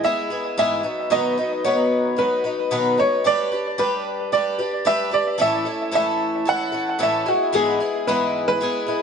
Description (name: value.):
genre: pop.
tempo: 112 BPM.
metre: 4/4.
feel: straight.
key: E major.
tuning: A4 = 440 Hz.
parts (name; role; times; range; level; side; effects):
bright upright piano; melody; 0.0-9.0 s; F#4 to F#5; -21 LUFS; right 1 dB; tape echo.
picked twelve-string acoustic guitar; accompaniment; 0.0-9.0 s; G#2 to B4; -22 LUFS; left 1 dB; none.
room: light reverb.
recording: nothing above 10.3 kHz, faint mains hum.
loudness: -19 LUFS.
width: side -6 dB against mid.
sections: 0.0-9.0 A section.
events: none.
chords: 0.0 E/G#; 0.8 B; 3.2 G; 5.4 A; 7.3 E/G#.